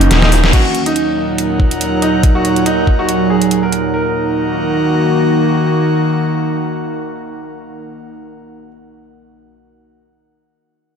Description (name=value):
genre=heavy wobble dubstep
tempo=141 BPM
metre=4/4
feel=swing 55% on 16ths, half-time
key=Eb minor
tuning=A4 = 440 Hz
part: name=bright concert grand piano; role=melody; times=0.0-8.7 s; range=Eb4 to Bb4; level=-20 LUFS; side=equal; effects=ping-pong delay
part: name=evolving wavetable pad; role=sustained chords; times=0.0-8.1 s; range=Eb2 to Gb4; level=-17 LUFS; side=right 1 dB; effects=chorus, built-in reverb, sidechain pumping
part: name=snarling distorted saw bass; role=bass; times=0.0-0.5 s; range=Eb1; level=-11 LUFS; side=equal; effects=distortion, overdrive
part: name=dubstep drum kit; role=drums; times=0.0-3.8 s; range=crash cymbal, hi-hat, snare drum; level=-18 LUFS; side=equal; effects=none
part: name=electronic kick drum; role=drums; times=0.5-3.0 s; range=none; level=-12 LUFS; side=equal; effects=none
part: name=airy breathy pad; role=texture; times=0.5-8.1 s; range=Eb4 to Gb5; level=-19 LUFS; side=right 1 dB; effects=chorus, sidechain pumping
room=wet plate reverb, RT60 1.1 s, digital ambience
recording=dreamy mix soaked in reverb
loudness=-12 LUFS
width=side -7 dB against mid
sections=0.5-3.9 A section; 3.9-7.3 B section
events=drum fill 0.1-0.5; band accent 0.4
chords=0.0 Ebm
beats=0.11 | 0.53 0.96 1.38 1.81 | 2.23 2.66 3.09 3.51 | 3.94 4.36 4.79 5.21 | 5.64 6.07 6.49 6.92